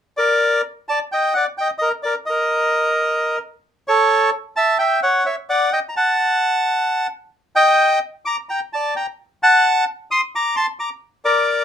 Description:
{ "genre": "tango", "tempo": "130 BPM", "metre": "4/4", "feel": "rubato", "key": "unclear", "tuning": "A4 = 440 Hz", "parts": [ { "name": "bandoneon", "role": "solo", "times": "0.2-11.6 s", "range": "A4 to D#6", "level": "-15 LUFS", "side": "equal", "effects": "none" } ], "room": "moderate club ambience, RT60 0.5 s", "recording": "minimal, uncompressed stereo recording", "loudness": "-16 LUFS", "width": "side -9 dB against mid", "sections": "0.0-11.6 A section", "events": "none", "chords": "0.0 Bb; 1.8 N.C.; 3.6 A; 5.5 D; 7.3 Gm; 9.2 F#dim; 11.0 N.C." }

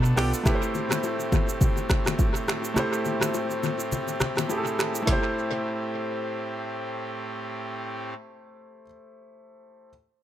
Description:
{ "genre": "afrobeats", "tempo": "104 BPM", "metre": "4/4", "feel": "swing 58% on 16ths", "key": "A minor", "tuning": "A4 = 443 Hz", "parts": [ { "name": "bright concert grand piano", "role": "accompaniment", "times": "0.0-9.9 s", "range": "A3 to D5", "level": "-30 LUFS", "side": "right 1 dB", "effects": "none" }, { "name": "pipe organ, trumpet", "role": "sustained chords", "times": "0.0-8.1 s", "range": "A2 to G4", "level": "-33 LUFS", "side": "right 1 dB", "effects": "none" }, { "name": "afro-pop drum kit", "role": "drums", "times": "0.0-5.2 s", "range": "finger snaps, hi-hat, kick drum, rim click, shaker, snare drum", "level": "-26 LUFS", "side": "equal", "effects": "tape echo" }, { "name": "bongos and congas", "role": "percussion", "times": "0.2-5.3 s", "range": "none", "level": "-32 LUFS", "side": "left 5 dB", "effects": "tape echo" } ], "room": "light reverb, studio ambience", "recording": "echo-heavy mix", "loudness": "-24 LUFS", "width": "side -12 dB against mid", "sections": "0.5-5.1 A section; 5.1-7.4 B section", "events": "none", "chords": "0.5 Am7" }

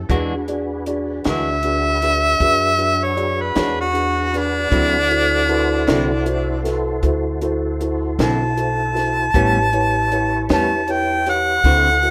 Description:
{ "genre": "slow blues", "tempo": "52 BPM (dotted quarters)", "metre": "12/8", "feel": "straight", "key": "unclear", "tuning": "A4 = 435 Hz", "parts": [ { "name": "clear harmonica", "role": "melody", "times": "0.0-12.1 s", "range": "D4 to A5", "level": "-20 LUFS", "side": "equal", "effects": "overdrive" }, { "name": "tonewheel organ", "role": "sustained chords", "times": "0.0-12.1 s", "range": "D4 to C#5", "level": "-30 LUFS", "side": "equal", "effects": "slow rotary speaker, chorus vibrato" }, { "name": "upright bass", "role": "bass", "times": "0.0-12.1 s", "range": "A1 to F#2", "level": "-26 LUFS", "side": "equal", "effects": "none" }, { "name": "clean electric guitar", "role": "accompaniment", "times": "0.1-11.9 s", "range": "A2 to F#4", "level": "-29 LUFS", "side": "equal", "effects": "tremolo" }, { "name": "dark grand piano", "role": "accompaniment", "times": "0.1-12.1 s", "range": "D4 to D5", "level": "-26 LUFS", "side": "equal", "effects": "none" }, { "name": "compact cocktail drum kit", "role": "drums", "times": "0.1-12.1 s", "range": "hi-hat, kick drum, snare drum", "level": "-25 LUFS", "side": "equal", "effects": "none" } ], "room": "light reverb, small room ambience", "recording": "rough home demo mix", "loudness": "-18 LUFS", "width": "mono", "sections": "0.0-12.1 A section", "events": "harmonica solo 0.0-12.1", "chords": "0.1 E9; 4.7 D9; 9.3 A9" }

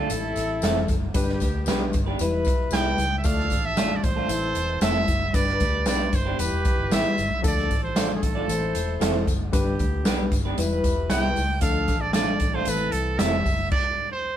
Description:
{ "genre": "uptempo 1960s-style soul", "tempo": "115 BPM", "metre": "4/4", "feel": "straight", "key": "D dorian", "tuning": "A4 = 438 Hz", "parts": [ { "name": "bright trumpet", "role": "melody", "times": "0.0-14.4 s", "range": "G#4 to G5", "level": "-27 LUFS", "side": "right 3 dB", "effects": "none" }, { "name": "electric guitar through a small old amp", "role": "stabs", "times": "0.0-13.3 s", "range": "A3 to D5", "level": "-29 LUFS", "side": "right 3 dB", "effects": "none" }, { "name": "vintage muted fingered electric bass", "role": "bass", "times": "0.0-13.7 s", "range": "E1 to D2", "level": "-28 LUFS", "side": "equal", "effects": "none" }, { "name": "clear horn section", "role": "second line", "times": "0.1-13.4 s", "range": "C3 to C5", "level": "-32 LUFS", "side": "left 3 dB", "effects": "none" }, { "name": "barky reed electric piano", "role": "accompaniment", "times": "0.1-13.5 s", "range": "E3 to D5", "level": "-30 LUFS", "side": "left 4 dB", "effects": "overdrive, fast tremolo" }, { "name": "swinging big-band drum kit", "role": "drums", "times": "0.1-13.8 s", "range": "crash cymbal, hi-hat, kick drum, snare drum", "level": "-26 LUFS", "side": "equal", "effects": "none" }, { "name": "tambourine", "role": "percussion", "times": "0.1-13.6 s", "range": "none", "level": "-38 LUFS", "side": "left 6 dB", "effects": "none" } ], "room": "light reverb", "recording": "band playing live in one room", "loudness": "-21 LUFS", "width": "side -10 dB against mid", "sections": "0.0-14.4 A section", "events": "stop 13.7-14.4", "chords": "0.1 Am; 1.2 G; 2.2 Em; 3.3 Dm; 4.3 Am; 5.3 G; 6.4 Em; 7.4 Dm; 8.5 Am; 9.5 G; 10.6 Em; 11.6 Dm; 12.7 Am; 13.7 N.C." }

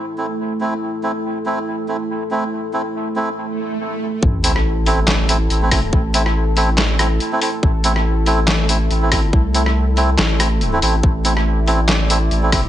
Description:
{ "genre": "deep dubstep", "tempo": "141 BPM", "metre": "4/4", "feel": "swing 56% on 16ths, half-time", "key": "A minor", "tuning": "A4 = 440 Hz", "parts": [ { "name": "dark analog pad", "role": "sustained chords", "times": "0.0-12.7 s", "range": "A3 to D5", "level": "-24 LUFS", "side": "right 1 dB", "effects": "chorus" }, { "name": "melodica", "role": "stabs", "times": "0.2-12.6 s", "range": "A3 to E4", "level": "-22 LUFS", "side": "right 2 dB", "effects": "vintage 12-bit sampler grit, dub echo" }, { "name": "swell and sub drop", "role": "sound effects", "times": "3.5-5.9 s", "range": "none", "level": "-26 LUFS", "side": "right 1 dB", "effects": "none" }, { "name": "saturated sub bass", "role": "bass", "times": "4.2-12.7 s", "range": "A1 to C2", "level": "-17 LUFS", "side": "equal", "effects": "none" }, { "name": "electronic kick drum", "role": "drums", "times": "4.2-12.6 s", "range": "none", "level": "-16 LUFS", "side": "equal", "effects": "none" }, { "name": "trip hop sampler-style drum kit", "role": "drums", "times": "4.4-12.6 s", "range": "handclaps, hi-hat, rim click, snare drum", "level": "-19 LUFS", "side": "left 1 dB", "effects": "none" } ], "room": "light reverb", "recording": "nothing above 10.4 kHz", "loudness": "-15 LUFS", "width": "side -12 dB against mid", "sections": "0.0-4.2 A section; 4.2-12.7 B section", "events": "swell 3.5-4.2; drop 4.2-12.7; impact 4.2-5.9", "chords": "0.0 Am" }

